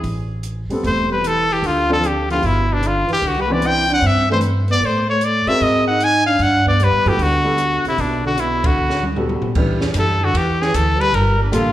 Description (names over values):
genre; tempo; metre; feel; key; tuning
jazz, small-group swing and bop; 151 BPM; 4/4; swing 67% on 8ths; G major; A4 = 439 Hz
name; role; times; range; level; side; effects
warm baby grand piano; accompaniment; 0.0-11.7 s; E3 to B4; -23 LUFS; equal; none
upright bass; bass; 0.0-11.7 s; E1 to A2; -21 LUFS; equal; none
open jazz drum kit; drums; 0.0-11.7 s; crash cymbal, hi-hat, kick drum, ride cymbal, snare drum, toms; -25 LUFS; equal; none
breathy trombone; second line; 0.8-11.7 s; Bb2 to E4; -23 LUFS; right 2 dB; none
brilliant trumpet; melody; 0.9-11.7 s; D4 to Ab5; -18 LUFS; left 1 dB; slapback echo
room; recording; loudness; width
moderate lush hall reverb, RT60 1.7 s, studio reverb; live gig heard through the venue's PA, club ambience; -15 LUFS; side -13 dB against mid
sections
0.0-9.6 A section; 9.6-11.7 B section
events
band accent 8.6; drum fill 8.8-9.6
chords
0.0 Am9; 1.6 Dm7; 2.4 G6; 3.2 Cmaj9; 4.8 Am; 5.6 Ab9; 6.4 Gmaj9; 9.6 Em7; 11.1 Gm9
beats
| 0.04 0.44 0.84 1.24 | 1.63 2.03 2.43 2.83 | 3.22 3.62 4.02 4.42 | 4.81 5.21 5.61 6.00 | 6.40 6.79 7.19 7.59 | 7.98 8.38 8.77 9.17 | 9.56 9.96 10.35 10.74 | 11.14 11.53